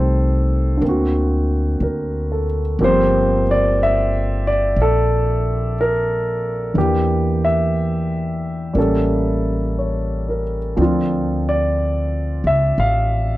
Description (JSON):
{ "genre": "jazz ballad", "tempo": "60 BPM", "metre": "4/4", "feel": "swing 66% on 8ths", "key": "unclear", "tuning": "A4 = 441 Hz", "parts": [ { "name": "warm grand piano", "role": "accompaniment", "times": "0.0-13.4 s", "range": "D3 to F5", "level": "-18 LUFS", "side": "equal", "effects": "none" }, { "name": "upright bass", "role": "bass", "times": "0.0-13.4 s", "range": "G1 to E2", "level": "-20 LUFS", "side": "equal", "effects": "none" } ], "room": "little or no reverb", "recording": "dry, close 1970s-style studio recording", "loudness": "-16 LUFS", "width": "side -16 dB against mid", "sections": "0.0-13.4 A section", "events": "none", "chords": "0.0 Am7b5; 0.8 D7b13; 2.8 Gm11; 6.8 Em7b5; 8.8 A7b9; 10.8 Dm7" }